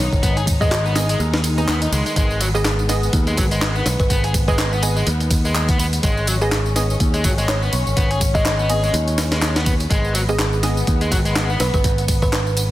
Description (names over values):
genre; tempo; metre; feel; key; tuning
breakbeat, breaks; 124 BPM; 4/4; swing 57% on 16ths; G# minor; A4 = 440 Hz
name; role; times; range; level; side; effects
dark studio string section; sustained chords; 0.0-12.7 s; D#3 to D#4; -28 LUFS; left 2 dB; vintage 12-bit sampler grit, sidechain pumping
picked electric bass; bass; 0.0-12.7 s; G#1 to D#2; -20 LUFS; equal; none
breakbeat sampler-style drum kit; drums; 0.1-12.7 s; hi-hat, kick drum, snare drum; -21 LUFS; equal; studio reverb
house drum kit; drums; 0.1-12.7 s; handclaps, ride cymbal, tambourine; -26 LUFS; equal; studio reverb
biting overdriven guitar; riff; 0.2-11.6 s; F#3 to G#4; -26 LUFS; left 1 dB; tape echo
kalimba; melody; 0.6-12.4 s; G#4 to D#5; -26 LUFS; equal; telephone sound, vintage 12-bit sampler grit, tape echo
filtered dub chord stab; stabs; 0.6-10.8 s; B3 to D#5; -28 LUFS; right 3 dB; chorus, vintage 12-bit sampler grit, tape echo
room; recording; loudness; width
light reverb, digital ambience; dense, heavily limited modern master; -16 LUFS; side -15 dB against mid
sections
0.0-12.7 A section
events
none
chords
0.0 G#m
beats
| 0.23 0.71 1.20 1.68 | 2.17 2.65 3.13 3.62 | 4.10 4.58 5.07 5.55 | 6.04 6.52 7.00 7.49 | 7.97 8.46 8.94 9.42 | 9.91 10.39 10.88 11.36 | 11.84 12.33